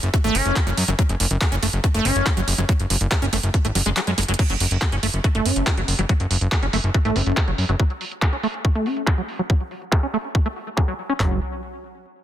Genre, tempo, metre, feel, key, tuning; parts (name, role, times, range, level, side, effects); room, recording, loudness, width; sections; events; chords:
psychedelic trance; 141 BPM; 4/4; straight; F# minor; A4 = 440 Hz
fat analog bass; bass; 0.0-7.8, 11.2-11.4 s; F#1 to F#2; -22 LUFS; equal
drum and bass drum kit; drums; 0.0-11.2 s; crash cymbal, handclaps, hi-hat; -26 LUFS; right 1 dB; overdrive, low-pass filter on hats, low-pass filter on snare, low-pass filter on cymbals
liquid acid bass; riff; 0.1-11.4 s; F#3 to F#4; -25 LUFS; equal; chorus, auto-pan, sidechain pumping, digital delay
drum and bass drum kit; drums; 0.1-11.3 s; handclaps, kick drum, toms; -19 LUFS; equal; overdrive
little or no reverb; dense, heavily limited modern master; -18 LUFS; side -11 dB against mid
0.0-4.4 A section; 4.4-11.2 B section; 11.2-12.2 C section
drop 0.0-4.4; kick drops out 4.0-4.4; drum fill 4.2; filter sweep on drum 4.4-11.2; filter sweep on acid bass 4.4-11.2
0.0 F#5; 11.2 N.C.